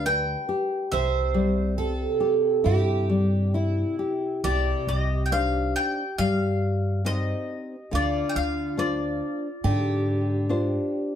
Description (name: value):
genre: fado-style ballad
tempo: 69 BPM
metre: 4/4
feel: rubato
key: C major, C minor from 4.4 s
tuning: A4 = 436 Hz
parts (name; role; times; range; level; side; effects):
- bowl-back mandolin; melody; 0.0-10.5 s; D5 to G5; -29 LUFS; left 3 dB; slapback echo
- picked twelve-string acoustic guitar; second line; 0.0-11.2 s; E4 to C5; -29 LUFS; right 6 dB; none
- nylon-string guitar; accompaniment; 0.0-11.2 s; C3 to C5; -27 LUFS; left 2 dB; none
- upright bass; bass; 0.0-10.7 s; C2 to Ab2; -26 LUFS; equal; none
room: moderate studio ambience, RT60 0.5 s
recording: none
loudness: -22 LUFS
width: side -9 dB against mid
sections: 0.0-4.4 A section; 4.4-11.2 B section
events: none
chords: 0.0 G; 0.9 C; 4.4 Cmadd9; 7.9 Dm7b5